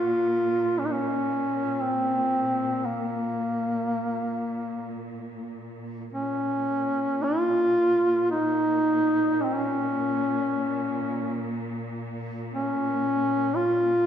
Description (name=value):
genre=caucasian folk, Caucasian lament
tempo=free time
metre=none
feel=none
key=Bb minor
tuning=A4 = 440 Hz
part: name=warm duduk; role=melody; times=0.0-14.1 s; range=Bb3 to F4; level=-24 LUFS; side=equal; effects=none
part: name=rich studio cello section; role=drone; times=0.0-14.1 s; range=Bb2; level=-34 LUFS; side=right 1 dB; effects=none
room=wet concert hall reverb, RT60 1.7 s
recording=minimal, uncompressed stereo recording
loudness=-23 LUFS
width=side -9 dB against mid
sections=0.0-6.1 A section; 6.1-14.1 B section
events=none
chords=none